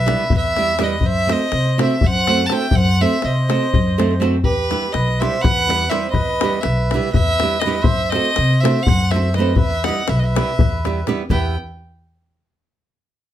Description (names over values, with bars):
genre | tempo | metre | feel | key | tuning
balkan folk, Balkan wedding band | 245 BPM (eighths) | 7/8 | straight | E harmonic minor | A4 = 440 Hz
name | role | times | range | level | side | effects
warm violin | melody | 0.0-11.6 s | B4 to A5 | -21 LUFS | right 1 dB | none
mellow accordion | second line | 0.0-11.6 s | E4 to F#5 | -27 LUFS | right 3 dB | none
upright bass | bass | 0.0-11.6 s | B1 to C3 | -20 LUFS | equal | none
flamenco guitar | accompaniment | 0.1-11.6 s | G3 to C5 | -22 LUFS | right 4 dB | none
davul | percussion | 0.1-11.6 s | none | -20 LUFS | left 3 dB | none
room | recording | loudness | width
moderate studio reverb, RT60 0.6 s | none | -15 LUFS | side -11 dB against mid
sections
0.0-11.3 A section; 11.3-13.0 B section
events
none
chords
0.0 Em; 1.0 F#dim; 4.4 Em; 7.9 F#dim; 9.6 Em